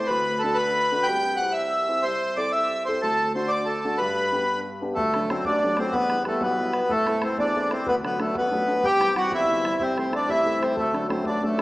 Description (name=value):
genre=celtic folk, Celtic jig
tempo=124 BPM (dotted quarters)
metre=6/8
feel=straight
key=unclear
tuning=A4 = 440 Hz
part: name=accordion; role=melody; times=0.0-11.6 s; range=A3 to G5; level=-22 LUFS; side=equal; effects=none
part: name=dark grand piano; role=accompaniment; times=0.0-11.6 s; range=G1 to A4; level=-28 LUFS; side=left 1 dB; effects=none
part: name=bodhran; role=percussion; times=5.0-11.6 s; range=none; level=-37 LUFS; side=right 1 dB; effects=none
room=wet recital hall reverb, RT60 1.7 s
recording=recorded in a church or concert hall, small speaker sound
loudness=-21 LUFS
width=side -19 dB against mid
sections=0.0-5.0 A section; 5.0-11.6 A section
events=none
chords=0.1 D; 1.1 C; 2.0 Am/C; 3.0 D; 4.0 G; 5.0 D; 5.9 Em; 6.9 Am; 7.9 D; 8.8 C; 9.8 Am/C; 10.8 D